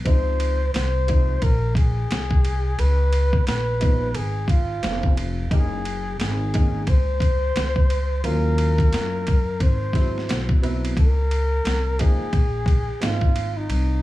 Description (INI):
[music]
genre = hip hop, jazz-hop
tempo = 88 BPM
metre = 4/4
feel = swing 62% on 16ths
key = Db major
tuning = A4 = 436 Hz
[part]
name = warm upright piano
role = accompaniment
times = 0.0-13.3 s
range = F3 to F4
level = -31 LUFS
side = right 4 dB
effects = none
[part]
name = upright bass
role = bass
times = 0.0-14.0 s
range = F1 to Gb2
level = -23 LUFS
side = equal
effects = none
[part]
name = breathy flugelhorn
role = melody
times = 0.1-14.0 s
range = Eb4 to C5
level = -27 LUFS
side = left 1 dB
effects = none
[part]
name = boom bap sampler-style drum kit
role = drums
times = 0.1-13.9 s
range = hi-hat, kick drum, ride cymbal, snare drum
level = -22 LUFS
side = equal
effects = none
[sound]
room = little or no reverb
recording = vinyl crackle, small room ambience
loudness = -19 LUFS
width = side -16 dB against mid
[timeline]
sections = 0.0-11.0 A section; 11.0-14.0 B section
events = none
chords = 0.1 Dbmaj7; 2.8 Db7; 5.5 Gb69; 8.2 Ebm9; 9.6 Ab7alt; 11.0 Db69